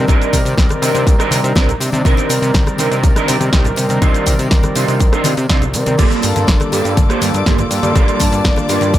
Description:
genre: nu-disco, nu disco.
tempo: 122 BPM.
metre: 4/4.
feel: straight.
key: unclear.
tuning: A4 = 440 Hz.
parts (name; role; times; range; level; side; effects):
warm analog pad; accompaniment; 0.0-9.0 s; Eb3 to A5; -19 LUFS; equal; chorus, sidechain pumping, analog delay.
fat analog bass; bass; 0.0-9.0 s; G1 to C3; -19 LUFS; equal; tube saturation, sidechain pumping.
mellow electric guitar; riff; 0.1-8.9 s; Bb3 to C5; -20 LUFS; right 4 dB; analog chorus, analog delay.
electronic kick drum; drums; 0.1-9.0 s; none; -14 LUFS; equal; none.
house drum kit; drums; 0.1-9.0 s; cabasa, crash cymbal, hi-hat, rim click, snare drum; -21 LUFS; equal; analog delay.
tambourine and congas; percussion; 0.1-9.0 s; none; -25 LUFS; left 4 dB; analog delay.
warm studio string section; sustained chords; 6.0-9.0 s; D5 to D6; -23 LUFS; left 2 dB; sidechain pumping.
room: light reverb.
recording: echo-heavy mix.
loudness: -12 LUFS.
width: side -13 dB against mid.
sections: 0.0-9.0 A section.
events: none.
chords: 0.0 Cm9; 6.0 Gm9.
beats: | 0.09 0.58 1.07 1.56 | 2.05 2.54 3.04 3.53 | 4.02 4.51 5.00 5.50 | 5.99 6.48 6.97 7.46 | 7.95 8.45 8.94.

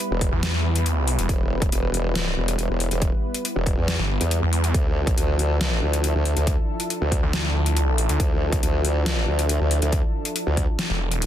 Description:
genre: heavy wobble dubstep.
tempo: 139 BPM.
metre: 4/4.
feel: half-time.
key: unclear.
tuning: A4 = 442 Hz.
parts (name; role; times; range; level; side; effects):
lush unison pad; sustained chords; 0.0-11.3 s; F3 to B4; -30 LUFS; left 1 dB; chorus, sidechain pumping.
dubstep drum kit; drums; 0.0-11.3 s; hi-hat, snare drum; -27 LUFS; left 2 dB; overdrive.
formant-sweep wobble bass; bass; 0.1-10.7 s; E1 to E2; -22 LUFS; equal; chorus, overdrive.
electronic kick drum; drums; 0.2-10.7 s; none; -23 LUFS; equal; overdrive.
snarling distorted saw bass; bass; 0.3-1.3, 4.0-8.2, 10.9-11.3 s; E1 to E2; -22 LUFS; equal; distortion, overdrive.
room: little or no reverb.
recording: dense, heavily limited modern master.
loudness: -20 LUFS.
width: side -11 dB against mid.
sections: 0.0-11.3 A section.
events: none.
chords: 0.0 Em; 4.7 Dmadd9.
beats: 0.00 0.43 0.86 | 1.29 1.72 2.15 2.59 | 3.02 3.45 3.88 4.31 | 4.75 5.18 5.61 6.04 | 6.47 6.90 7.33 7.77 | 8.20 8.63 9.06 9.49 | 9.93 10.36 10.79 11.22.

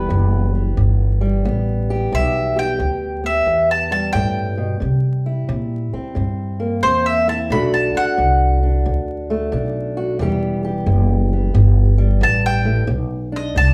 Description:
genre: acoustic country blues, solo or duo.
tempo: 89 BPM.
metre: 4/4.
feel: swing 65% on 8ths.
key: E minor.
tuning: A4 = 440 Hz.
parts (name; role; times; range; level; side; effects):
mandolin; melody; 0.0-13.7 s; B4 to B5; -21 LUFS; equal; none.
fingerpicked old ladder-braced acoustic guitar; accompaniment; 0.0-13.7 s; E2 to G4; -25 LUFS; equal; none.
upright bass; bass; 0.0-13.7 s; E1 to C3; -20 LUFS; equal; none.
room: wet large studio reverb, RT60 0.8 s.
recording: band playing live in one room, vinyl crackle.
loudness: -18 LUFS.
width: mono.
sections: 0.0-13.7 A section.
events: mandolin solo 0.0-13.7.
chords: 0.0 Em; 4.8 C7; 7.5 Bm7; 10.2 Em; 12.9 B(#9).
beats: 0.09 0.76 1.44 | 2.11 2.79 3.46 4.14 | 4.81 5.49 6.16 6.83 | 7.50 8.18 8.85 9.52 | 10.20 10.87 11.54 12.21 | 12.88 13.55.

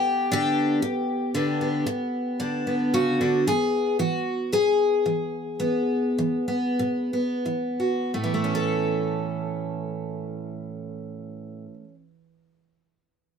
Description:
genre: folk, solo fingerstyle acoustic guitar.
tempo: 81-118 BPM.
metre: 4/4.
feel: rubato.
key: A major.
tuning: A4 = 441 Hz.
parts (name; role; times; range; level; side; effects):
picked twelve-string acoustic guitar; solo; 0.0-11.9 s; E2 to A4; -23 LUFS; equal; none.
room: light reverb.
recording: close, detailed microphones.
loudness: -22 LUFS.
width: side -6 dB against mid.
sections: 0.0-3.5 A section; 3.5-8.2 B section; 8.2-13.4 C section.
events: slowing down 3.5-8.2.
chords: 0.0 G/D; 3.5 Eadd9; 8.2 A.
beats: 0.31 0.82 | 1.33 1.85 2.38 2.92 | 3.46 3.99 4.51 5.04 | 5.59 6.17 6.79 7.44 | 8.15 8.88 9.61 10.33 | 11.04 11.76.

